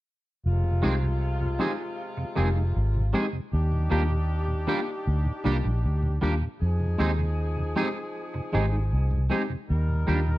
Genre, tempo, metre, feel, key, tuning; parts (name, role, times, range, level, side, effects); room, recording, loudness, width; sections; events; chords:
reggae; 78 BPM; 4/4; straight; F dorian; A4 = 440 Hz
clear horn section; second line; 0.5-10.4 s; C3 to Bb4; -35 LUFS; left 2 dB
vintage muted fingered electric bass; bass; 0.5-10.4 s; F1 to F2; -24 LUFS; equal
mellow tonewheel organ; accompaniment; 0.6-10.3 s; Eb2 to Eb4; -34 LUFS; right 1 dB; slow rotary speaker
barky tine electric piano; accompaniment; 0.8-10.2 s; Ab3 to G4; -33 LUFS; left 2 dB; overdrive, slapback echo
twangy electric guitar; stabs; 0.8-10.2 s; Eb3 to Ab4; -32 LUFS; right 4 dB; analog chorus, slapback echo
digital ambience; dry, close 1970s-style studio recording; -24 LUFS; side -17 dB against mid
0.4-10.4 A section
0.4 Fm7; 3.5 Ebmaj7; 6.6 Fm7; 9.7 Ebmaj7